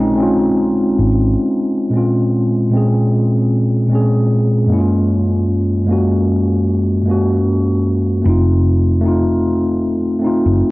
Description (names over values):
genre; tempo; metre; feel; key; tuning
lo-fi hip hop; 76 BPM; 4/4; swing 58% on 16ths; Bb minor; A4 = 444 Hz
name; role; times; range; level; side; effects
hollow-body jazz guitar; melody; 0.0-1.1 s; Bb4; -43 LUFS; right 2 dB; none
mellow tine electric piano; accompaniment; 0.0-10.7 s; Gb2 to Ab4; -13 LUFS; equal; medium stereo tremolo, cassette tape
vintage muted fingered electric bass; bass; 0.0-1.3, 8.3-10.6 s; F1 to Bb1; -16 LUFS; equal; tube saturation
room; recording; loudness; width
moderate spring reverb, RT60 2.6 s; home recording on cassette; -13 LUFS; side -21 dB against mid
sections
0.0-1.9 A section; 1.9-10.7 B section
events
none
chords
0.0 Bbm7; 1.9 Bbm9; 4.7 Gbmaj7; 8.2 F7